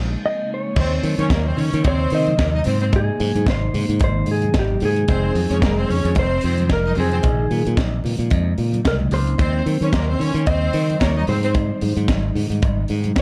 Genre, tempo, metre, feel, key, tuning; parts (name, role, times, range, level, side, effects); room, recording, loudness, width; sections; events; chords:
disco; 111 BPM; 4/4; swing 56% on 16ths; A4 = 440 Hz
mellow electric guitar; melody; 0.0-13.2 s; G4 to Eb5; -27 LUFS; equal
ethereal airy pad; sustained chords; 0.1-13.2 s; C3 to Eb4; -30 LUFS; equal; ensemble chorus, built-in reverb, phaser
modern bright fingered electric bass; bass; 0.0-13.2 s; F1 to Eb3; -23 LUFS; equal
bright symphonic string section; second line; 0.8-11.5 s; Bb3 to Eb5; -28 LUFS; equal
tight funk drum kit; drums; 0.8-13.2 s; crash cymbal, hi-hat, kick drum, snare drum; -25 LUFS; equal
congas; percussion; 0.8-13.2 s; -32 LUFS; equal
cowbell; percussion; 0.8-13.2 s; -38 LUFS; equal
small room reverb; dark, warm production; -19 LUFS; mono
0.8-13.2 A section
band accent 0.0-0.8
0.0 Bbm11; 0.8 Ebsus2; 2.7 Ab; 5.1 Fm7; 7.2 Bbm11; 9.4 Eb13; 11.3 Abmaj7